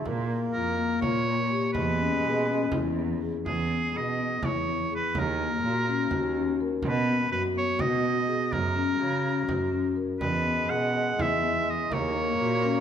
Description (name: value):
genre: contemporary instrumental, chamber music in an uneven meter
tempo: 248 BPM (eighths)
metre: 7/8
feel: straight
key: E lydian from 3.5 s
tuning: A4 = 441 Hz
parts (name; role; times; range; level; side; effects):
- mellow bassoon; second line; 0.0-3.2, 10.2-12.8 s; G#3 to A#3; -32 LUFS; right 2 dB; none
- muted cello; bass; 0.1-12.8 s; D#2 to C#3; -31 LUFS; right 4 dB; none
- frame drum; percussion; 0.1-12.8 s; none; -36 LUFS; right 2 dB; none
- marimba with soft mallets; arpeggios; 0.3-12.8 s; A#3 to A#4; -29 LUFS; left 6 dB; none
- bright oboe; melody; 0.5-12.8 s; G#4 to F#5; -29 LUFS; right 2 dB; none
room: wet recital hall reverb, RT60 1.7 s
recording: minimal, uncompressed stereo recording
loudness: -24 LUFS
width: side -8 dB against mid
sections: 0.0-3.5 A section; 3.5-12.8 B section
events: none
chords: 0.1 A#m; 1.8 E6; 3.5 Emaj7; 5.2 D#m7; 6.8 B; 8.5 F#; 10.2 E; 11.9 D#m7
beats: | 0.06 0.30 0.55 0.79 1.03 1.27 1.51 | 1.75 1.99 2.23 2.48 2.72 2.97 3.21 | 3.46 3.70 3.94 4.19 4.43 4.67 4.91 | 5.15 5.39 5.63 5.88 6.12 6.36 6.60 | 6.83 7.08 7.32 7.55 7.80 8.04 8.28 | 8.52 8.76 9.00 9.24 9.49 9.73 9.97 | 10.22 10.46 10.71 10.95 11.19 11.43 11.67 | 11.92 12.16 12.40 12.64